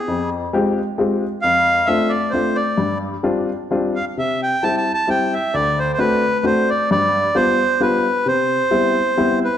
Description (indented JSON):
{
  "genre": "musette waltz",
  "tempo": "132 BPM",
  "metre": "3/4",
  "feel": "swing 54% on 8ths",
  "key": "C major",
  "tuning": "A4 = 440 Hz",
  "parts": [
    { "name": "accordion", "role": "melody", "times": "0.0-9.6 s", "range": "Ab4 to A5", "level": "-18 LUFS", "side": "right 1 dB", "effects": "none" },
    { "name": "warm upright piano", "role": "accompaniment", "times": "0.1-9.4 s", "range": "D2 to G4", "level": "-20 LUFS", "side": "left 3 dB", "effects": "none" }
  ],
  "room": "wet recital hall reverb, RT60 1.6 s",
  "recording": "none",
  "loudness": "-16 LUFS",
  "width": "side -10 dB against mid",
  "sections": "0.0-9.6 A section",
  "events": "none",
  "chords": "0.1 Fmadd9; 1.4 Dm7/F; 2.8 G7sus4; 4.2 C; 5.5 D7; 6.9 G7; 8.3 Cmaj7"
}